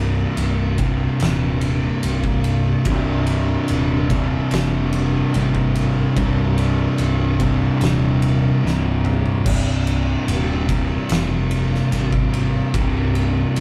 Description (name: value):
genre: stoner and doom metal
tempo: 73 BPM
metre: 4/4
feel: straight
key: C minor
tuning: A4 = 437 Hz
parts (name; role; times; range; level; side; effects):
- thick fuzz guitar; riff; 0.0-13.6 s; C2 to C3; -23 LUFS; equal; distortion
- hollow-body short-scale fingered electric bass; bass; 0.0-13.6 s; C1 to Ab1; -25 LUFS; equal; overdrive
- oversized low-tuned drum kit; drums; 0.4-13.6 s; crash cymbal, kick drum, ride cymbal, snare drum, toms; -27 LUFS; equal; none
- fuzz guitar; riff; 2.9-9.4 s; C2 to C3; -24 LUFS; equal; distortion
room: moderate stone room reverb, RT60 0.9 s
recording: band playing live in one room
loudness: -19 LUFS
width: mono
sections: 0.0-9.5 A section; 9.5-13.6 A section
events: drum fill 8.6-9.5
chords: 0.0 Cm